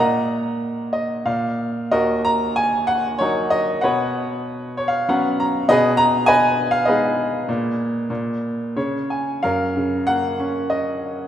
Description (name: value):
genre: classical, lyrical solo piano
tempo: 88-101 BPM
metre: 3/4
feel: rubato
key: Eb minor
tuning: A4 = 440 Hz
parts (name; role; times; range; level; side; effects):
- bright concert grand piano; solo; 0.0-11.3 s; Eb2 to Bb5; -18 LUFS; equal; none
room: wet concert hall reverb, RT60 2.4 s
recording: recorded in a church or concert hall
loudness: -18 LUFS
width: side -10 dB against mid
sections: 0.0-9.4 A section; 9.4-11.3 B section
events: grand piano fill 0.6-1.9, 4.5-5.7, 8.4-9.4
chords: 0.0 Ebm/Bb; 1.3 N.C.; 1.9 Ebm; 3.8 Bsus2; 5.7 Abm/Cb; 7.5 Abmadd9/Bb; 8.8 Db5; 9.4 F#